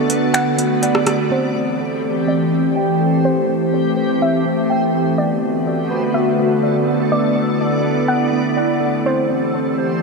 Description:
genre	hip hop, atmospheric cloud-rap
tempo	124 BPM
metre	4/4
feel	half-time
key	A dorian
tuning	A4 = 441 Hz
part	warbly tape-like pad	sustained chords	0.0-10.0 s	D3 to G4	-17 LUFS	left 1 dB	chorus, built-in reverb, low-pass filter
part	mellow electric guitar	arpeggios	0.0-10.0 s	B3 to G5	-24 LUFS	right 5 dB	low-pass filter, ping-pong delay
part	backwards swelling texture	texture	0.0-10.0 s	A3 to D5	-26 LUFS	equal	built-in reverb, analog chorus
part	booming analog drum machine	drums	0.1-1.2 s	finger snaps, hi-hat, rim click	-24 LUFS	right 1 dB	overdrive
part	soft round pluck	melody	0.3-9.5 s	C5 to F#5	-24 LUFS	left 1 dB	chorus, low-pass filter, ping-pong delay
room	wet huge ambient reverb, RT60 4.2 s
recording	dreamy mix soaked in reverb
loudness	-15 LUFS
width	side -3 dB against mid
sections	0.0-1.3 A section; 1.3-10.0 B section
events	break 0.0-1.3; filter sweep 1.3-10.0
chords	0.0 Bm7; 1.3 Am7; 5.2 Bm7; 9.1 Am7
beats	0.34 0.82 | 1.31 1.79 2.28 2.76 | 3.25 3.73 4.21 4.70 | 5.18 5.66 6.15 6.63 | 7.12 7.60 8.08 8.57 | 9.05 9.54 10.02

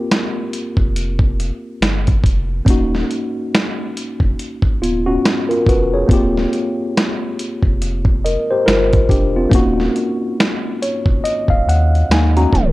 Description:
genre	lo-fi hip hop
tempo	70 BPM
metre	4/4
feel	swing 60% on 16ths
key	Eb major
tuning	A4 = 439 Hz
part	mellow tine electric piano	accompaniment	0.0-12.7 s	Bb3 to Cb6	-18 LUFS	left 1 dB	medium stereo tremolo, cassette tape, low-pass filter
part	dusty soul sampler-style drum kit	drums	0.1-12.7 s	hi-hat, kick drum, snare drum	-16 LUFS	equal	none
part	sub bass with octave	bass	0.8-12.7 s	Eb1 to Eb2	-19 LUFS	equal	none
room	light reverb, digital ambience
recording	cassette tape, tape stop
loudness	-14 LUFS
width	side -18 dB against mid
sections	0.0-12.7 A section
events	tape stop 12.5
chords	0.0 Eb69 (rootless); 2.7 Ebm9; 6.1 Eb69; 9.5 Ebm11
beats	0.09 0.95 1.80 | 2.66 3.52 4.38 5.23 | 6.09 6.95 7.80 8.66 | 9.52 10.38 11.23 12.09

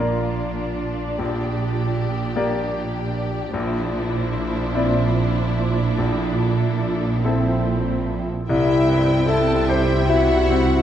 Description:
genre	cinematic, emotional film score for orchestra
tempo	47-52 BPM (dotted quarters)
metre	6/8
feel	rubato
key	unclear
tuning	A4 = 441 Hz
part	warm symphonic violin section	melody	0.0-10.8 s	A4 to G5	-33 LUFS	left 3 dB	none
part	warm symphonic violin section	second line	0.0-10.8 s	E4 to A5	-30 LUFS	left 2 dB	none
part	bright grand piano	accompaniment	0.0-10.8 s	Bb1 to D5	-25 LUFS	left 3 dB	none
part	clear symphonic viola section	accompaniment	0.0-10.8 s	C4 to E4	-29 LUFS	right 2 dB	none
part	rich symphonic cello section	bass	0.0-10.8 s	Bb2 to C3	-25 LUFS	right 2 dB	none
part	warm studio double bass section	bass	0.0-10.8 s	Bb1 to C2	-25 LUFS	right 3 dB	none
part	warm clarinet	second line	8.5-10.8 s	E4 to A4	-21 LUFS	left 1 dB	none
part	clear French horn section	sustained chords	8.5-10.8 s	G3 to E4	-25 LUFS	left 2 dB	none
room	moderate scoring stage reverb, RT60 2.0 s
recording	dark, warm production, nothing above 10.5 kHz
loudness	-18 LUFS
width	side -10 dB against mid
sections	0.0-8.5 A section; 8.5-10.8 B section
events	none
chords	0.0 Bb; 1.2 Gm/Bb; 3.5 Cadd9/Bb; 6.0 Am/Bb; 8.5 C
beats	0.01 | 1.20 2.37 | 3.54 4.74 | 5.98 7.24 | 8.49 9.69

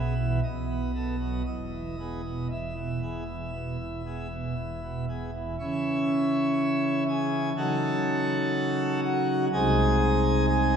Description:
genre	classical, chorale-style piece for pipe organ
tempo	57-63 BPM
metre	4/4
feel	rubato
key	E major, C# minor from 5.6 s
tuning	A4 = 442 Hz
part	pipe organ, plenum	solo	0.0-10.8 s	E1 to A5	-25 LUFS	equal	none
room	wet church reverb, RT60 3.5 s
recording	small room ambience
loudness	-25 LUFS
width	side -7 dB against mid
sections	0.0-5.6 A section; 5.6-10.8 B section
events	none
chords	0.4 B7; 1.5 E; 5.6 C#m; 7.6 D#m7b5/C#; 9.5 G#/B#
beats	0.43 | 1.45 2.50 3.53 4.57 | 5.59 6.59 7.57 8.55 | 9.52 10.48

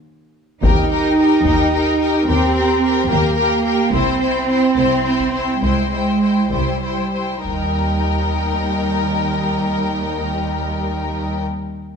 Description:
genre	cinematic, epic orchestral film score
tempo	62-73 BPM (dotted quarters)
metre	6/8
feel	straight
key	Eb major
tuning	A4 = 440 Hz
part	dark studio violin section	melody	0.6-11.4 s	G5	-27 LUFS	left 3 dB	none
part	warm symphonic violin section	second line	0.6-11.4 s	Bb4 to C5	-22 LUFS	left 5 dB	none
part	warm symphonic viola section	accompaniment	0.6-11.4 s	Eb4 to G4	-26 LUFS	right 1 dB	none
part	rich symphonic double bass section	bass	0.6-11.4 s	C2 to Eb2	-23 LUFS	right 2 dB	none
part	warm symphonic cello section	bass	0.6-11.4 s	G3 to Eb4	-19 LUFS	right 2 dB	none
part	taiko ensemble	drums	0.6-8.7 s	none	-21 LUFS	left 2 dB	none
room	moderate scoring stage reverb, RT60 1.7 s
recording	none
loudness	-15 LUFS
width	side -6 dB against mid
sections	0.6-7.5 A section; 7.5-11.3 B section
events	break 0.0-0.6; drum fill 0.0-0.6; slowing down 3.1-7.5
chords	0.0 N.C.; 0.6 Eb; 3.9 C; 7.5 Eb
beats	| 0.63 1.45 | 2.27 3.10 | 3.92 4.76 | 5.62 6.52 | 7.46 8.42 | 9.39 10.36

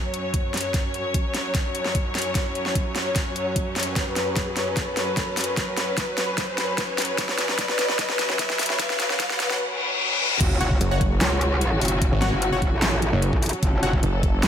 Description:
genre	heavy wobble dubstep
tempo	149 BPM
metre	4/4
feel	half-time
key	F# minor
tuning	A4 = 441 Hz
part	rich studio string section	sustained chords	0.0-14.5 s	F#2 to C#5	-27 LUFS	left 1 dB	sidechain pumping
part	riser, reverse cymbal and sub drop	sound effects	0.0-12.0 s	none	-30 LUFS	left 1 dB	none
part	dubstep drum kit	drums	0.1-14.5 s	crash cymbal, handclaps, hi-hat, snare drum	-26 LUFS	equal	overdrive, high-pass filter on hats, studio reverb, high-pass filter on snare, high-pass filter on cymbals
part	electronic kick drum	drums	0.3-14.3 s	none	-25 LUFS	equal	overdrive, studio reverb
part	metallic wobble bass	bass	10.4-14.5 s	F#1 to C#2	-23 LUFS	equal	distortion, chorus, overdrive
part	supersaw stab	stabs	10.6-13.9 s	F#4 to F#5	-31 LUFS	left 2 dB	tape echo
part	snarling distorted saw bass	bass	10.8-14.4 s	F#1 to G#1	-22 LUFS	equal	distortion, overdrive
room	light reverb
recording	high-pass filter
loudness	-21 LUFS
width	side -9 dB against mid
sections	0.0-10.4 A section; 10.4-14.5 B section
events	build-up 0.0-10.4; drum fill 0.0-9.6; riser 0.0-9.6; filter sweep 0.0-10.4; reverse cymbal 9.6-10.4; drop 10.4-14.5; impact 10.4-12.0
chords	0.0 F#5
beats	0.34 | 0.74 1.14 1.55 1.95 | 2.35 2.75 3.16 3.56 | 3.96 4.37 4.77 5.17 | 5.57 5.98 6.38 6.78 | 7.18 7.59 7.99 8.39 | 8.79 9.20 9.60 10.00 | 10.40 10.81 11.21 11.61 | 12.02 12.42 12.82 13.22 | 13.63 14.03 14.43

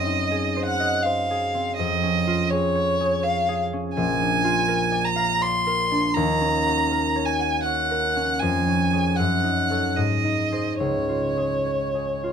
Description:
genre	classical, romantic duo for violin and harp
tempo	70-84 BPM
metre	3/4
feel	rubato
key	Db major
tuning	A4 = 441 Hz
part	rich violin	melody	0.0-12.3 s	Db5 to C6	-23 LUFS	equal	none
part	concert harp	accompaniment	0.0-12.3 s	Bb1 to Gb5	-24 LUFS	equal	none
room	little or no reverb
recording	close, detailed microphones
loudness	-20 LUFS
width	side -7 dB against mid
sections	0.0-12.3 A section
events	none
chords	0.0 Ab7/Gb; 1.8 Db/F; 4.0 Bb7; 6.2 Ebm7; 8.4 Db/F; 9.2 Ebm7b5/Gb; 10.0 Ab; 10.8 Db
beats	0.29 1.04 | 1.78 2.50 3.24 | 3.97 4.68 5.41 | 6.15 6.90 7.64 | 8.40 9.17 9.96 | 10.79 11.65

